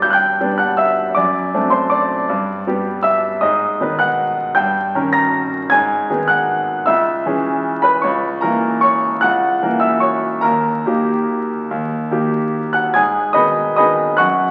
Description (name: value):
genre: classical, piano waltz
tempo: 138-166 BPM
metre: 3/4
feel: rubato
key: G# minor from 3.4 s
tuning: A4 = 438 Hz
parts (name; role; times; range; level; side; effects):
- bright concert grand piano; solo; 0.0-14.5 s; C#2 to A#6; -17 LUFS; equal; none
room: wet recital hall reverb, RT60 1.7 s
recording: very old 78 rpm record, vinyl crackle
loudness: -17 LUFS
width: mono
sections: 0.0-12.9 A section; 12.9-14.5 B section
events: none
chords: 0.0 G; 1.2 D7/F#; 2.3 G; 3.4 G#m; 4.6 D#7/G; 5.7 G#m; 6.9 C#m; 8.0 A#dim/C#; 10.4 D#; 12.9 G#m